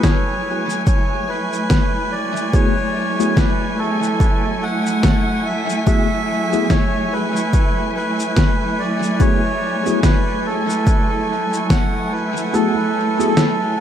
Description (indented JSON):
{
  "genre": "ambient dub",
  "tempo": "72 BPM",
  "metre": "4/4",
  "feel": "swing 59% on 16ths",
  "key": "F# minor",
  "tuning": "A4 = 437 Hz",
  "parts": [
    { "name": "melodica", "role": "melody", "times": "0.0-13.8 s", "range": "A4 to F#5", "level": "-22 LUFS", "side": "right 1 dB", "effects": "dub echo" },
    { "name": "dark symphonic string section", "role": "sustained chords", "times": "0.0-13.8 s", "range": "F#3 to G#5", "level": "-22 LUFS", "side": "right 1 dB", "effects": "none" },
    { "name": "electronic kick drum", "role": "drums", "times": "0.0-11.9 s", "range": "none", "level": "-17 LUFS", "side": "equal", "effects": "overdrive" },
    { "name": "electronic snare drum and shaker", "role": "drums", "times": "0.0-13.6 s", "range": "none", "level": "-22 LUFS", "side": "left 1 dB", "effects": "overdrive, dub echo" },
    { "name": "drifting glass-harmonics texture", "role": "texture", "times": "0.0-13.8 s", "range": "C#5 to C#6", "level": "-34 LUFS", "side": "right 4 dB", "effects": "chorus, built-in reverb" },
    { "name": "tine electric piano", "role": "stabs", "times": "2.5-13.3 s", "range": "A3 to G#4", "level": "-25 LUFS", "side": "left 3 dB", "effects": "medium stereo tremolo, low-pass filter, dub echo" }
  ],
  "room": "light reverb",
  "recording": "none",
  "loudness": "-16 LUFS",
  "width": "side -10 dB against mid",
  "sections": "0.0-12.5 A section; 12.5-13.8 B section",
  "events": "none",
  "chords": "0.0 F#m11"
}